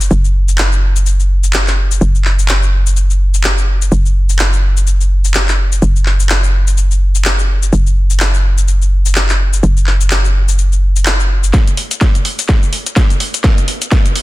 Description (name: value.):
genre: bass house.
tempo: 126 BPM.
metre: 4/4.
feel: swing 58% on 16ths.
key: unclear.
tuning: A4 = 440 Hz.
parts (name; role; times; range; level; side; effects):
hollow knocking FM bass; bass; 0.0-11.5 s; F#1; -12 LUFS; equal; tube saturation, sidechain pumping.
garage drum kit; drums; 0.0-14.2 s; cabasa, handclaps, hi-hat, snare drum; -17 LUFS; left 1 dB; high-pass filter on hats, high-pass filter on perc, high-pass filter on snare, high-pass filter on cymbals, high-pass filter on room.
electronic kick drum; drums; 11.5-14.0 s; none; -11 LUFS; equal; none.
room: little or no reverb.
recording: dense, heavily limited modern master.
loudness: -10 LUFS.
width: side -18 dB against mid.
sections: 0.0-11.5 A section; 11.5-14.2 B section.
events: build-up 11.5-14.2; drum fill 11.5-14.2.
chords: none.